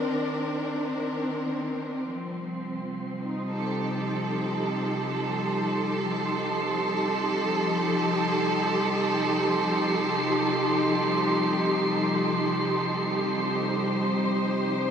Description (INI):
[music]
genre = ambient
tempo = free time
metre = none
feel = none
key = unclear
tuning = A4 = 440 Hz
[part]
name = warm studio string section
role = sustained chords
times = 0.0-14.9 s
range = Eb3 to C5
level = -26 LUFS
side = equal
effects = none
[part]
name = wind-like tuned noise texture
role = texture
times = 0.0-14.9 s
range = C6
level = -33 LUFS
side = right 2 dB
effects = built-in reverb
[part]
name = analog drone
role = drone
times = 2.4-14.9 s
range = C3 to G3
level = -31 LUFS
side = equal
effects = chorus
[sound]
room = wet lush hall reverb, RT60 2.8 s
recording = none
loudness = -24 LUFS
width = side -7 dB against mid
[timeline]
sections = 0.0-2.1 A section; 2.1-14.9 B section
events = none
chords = 0.0 Cm9; 2.1 F9